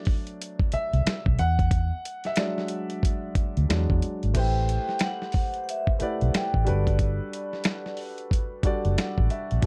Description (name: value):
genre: R&B, neo-soul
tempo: 91 BPM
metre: 4/4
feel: swing 62% on 16ths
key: A dorian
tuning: A4 = 440 Hz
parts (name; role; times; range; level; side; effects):
- warm grand piano; accompaniment; 0.0-9.7 s; B2 to F#5; -34 LUFS; equal; plate reverb
- dusty soul sampler-style drum kit; drums; 0.1-9.7 s; crash cymbal, finger snaps, hi-hat, kick drum, snare drum; -28 LUFS; equal; none
- vintage muted fingered electric bass; bass; 0.7-9.7 s; F#1 to E2; -26 LUFS; equal; none
- vibraphone with medium hard mallets; melody; 4.4-8.0 s; D5 to G5; -34 LUFS; equal; slapback echo, plate reverb
room: little or no reverb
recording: dark, warm production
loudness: -26 LUFS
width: mono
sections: 0.0-4.3 A section; 4.3-9.7 B section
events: grand piano solo 0.0-4.3; grand piano fill 8.6-9.6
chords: 0.0 Bm7 (rootless); 1.4 E9; 3.7 E7; 4.3 Am9; 6.7 Gmaj7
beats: 0.39 1.05 | 1.71 2.37 3.03 3.69 | 4.35 5.01 5.67 6.33 | 6.99 7.65 8.31 8.97 | 9.62